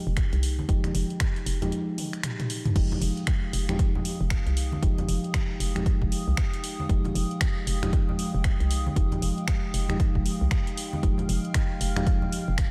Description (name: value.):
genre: deep house.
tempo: 116 BPM.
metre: 4/4.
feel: swing 61% on 16ths.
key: F minor.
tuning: A4 = 440 Hz.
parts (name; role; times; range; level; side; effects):
mellow FM electric piano; stabs; 0.0-12.7 s; F3 to G4; -34 LUFS; equal; chorus, sidechain pumping, analog delay.
hollow knocking FM bass; bass; 0.1-12.6 s; F1 to C2; -30 LUFS; equal; none.
electronic kick drum; drums; 0.2-12.7 s; none; -28 LUFS; equal; none.
punchy analog drum machine; drums; 0.2-12.7 s; crash cymbal, finger snaps, hi-hat, toms; -36 LUFS; equal; none.
congas and bongos; percussion; 0.6-12.3 s; none; -37 LUFS; equal; sidechain pumping on perc.
warbly tape-like pad; sustained chords; 3.0-12.7 s; Ab3 to F6; -40 LUFS; equal; chorus, built-in reverb, sidechain pumping.
room: light reverb.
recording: none.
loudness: -26 LUFS.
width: mono.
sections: 0.0-12.7 A section.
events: break 1.7-2.8; drum fill 2.0-2.8.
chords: 0.0 Fm9.